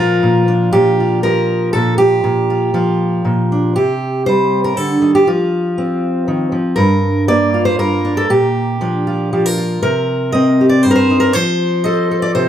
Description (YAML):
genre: folk, solo fingerstyle acoustic guitar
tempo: 119 BPM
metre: 3/4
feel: straight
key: C dorian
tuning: A4 = 441 Hz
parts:
  - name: fingerpicked steel-string acoustic guitar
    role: solo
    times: 0.0-12.5 s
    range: G2 to Eb5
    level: -12 LUFS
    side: equal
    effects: none
room: moderate large studio reverb, RT60 0.8 s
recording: none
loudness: -12 LUFS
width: side -10 dB against mid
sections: 0.0-3.8 A section; 3.8-12.5 B section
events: none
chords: 0.0 Bb6; 3.8 Cm; 5.3 F5; 6.8 Gm7; 8.3 Bb; 9.8 Cm7; 11.3 F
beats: 0.22 | 0.72 1.22 1.72 | 2.22 2.73 3.24 | 3.75 4.26 4.77 | 5.27 5.77 6.27 | 6.77 7.28 7.78 | 8.29 8.79 9.30 | 9.82 10.33 10.84 | 11.34 11.85 12.35